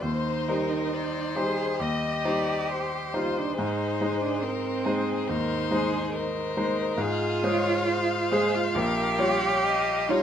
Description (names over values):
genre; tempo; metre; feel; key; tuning
classical, slow romantic movement for piano quartet; 68 BPM; 4/4; rubato; F minor from 7.0 s; A4 = 440 Hz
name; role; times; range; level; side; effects
rich violin; melody; 0.0-10.2 s; Ab4 to Eb5; -31 LUFS; left 6 dB; none
rich cello; second line; 0.0-10.2 s; C4 to Ab4; -28 LUFS; right 4 dB; none
rich violin; second line; 0.0-10.2 s; Ab4 to F5; -34 LUFS; left 4 dB; none
bright grand piano; accompaniment; 0.0-10.2 s; Bb1 to Db5; -28 LUFS; equal; none
room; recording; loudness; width
light reverb; none; -24 LUFS; side -9 dB against mid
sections
0.0-10.2 A section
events
none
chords
0.0 Cm/Eb; 3.6 Ab; 7.0 Fm/Ab; 8.8 Gm7b5/Bb